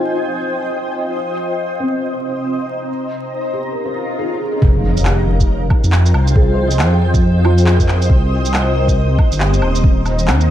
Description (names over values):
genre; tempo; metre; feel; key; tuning
future garage; 138 BPM; 4/4; swing 61% on 16ths; F minor; A4 = 444 Hz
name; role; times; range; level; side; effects
felt-muted upright piano; accompaniment; 0.0-10.0 s; C4 to Eb5; -24 LUFS; equal; analog chorus, sidechain pumping, ping-pong delay
granular cloud pad; sustained chords; 0.0-10.5 s; C4 to Bb5; -20 LUFS; left 1 dB; built-in reverb, ensemble chorus, sidechain pumping
swell and impact; sound effects; 3.9-6.4 s; none; -24 LUFS; equal; none
dark detuned saw bass; bass; 4.6-10.5 s; Eb1 to F2; -14 LUFS; equal; sidechain pumping
electronic kick drum; drums; 4.6-9.9 s; none; -14 LUFS; equal; none
electronic shaker, handclaps and woodblock; drums; 5.0-10.5 s; none; -22 LUFS; right 1 dB; none
room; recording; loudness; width
light reverb; vinyl crackle; -13 LUFS; side -11 dB against mid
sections
0.0-4.6 A section; 4.6-10.5 B section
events
swell 3.9-4.6; impact 4.6-6.4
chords
0.0 Fm9; 1.1 Cm7; 2.9 Eb9sus4; 4.6 Fm9; 8.1 Cm7; 9.8 Eb7sus2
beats
0.27 0.71 | 1.14 1.58 2.01 2.45 | 2.88 3.32 3.75 4.19 | 4.62 5.06 5.49 5.93 | 6.36 6.79 7.23 7.67 | 8.10 8.53 8.97 9.40 | 9.84 10.27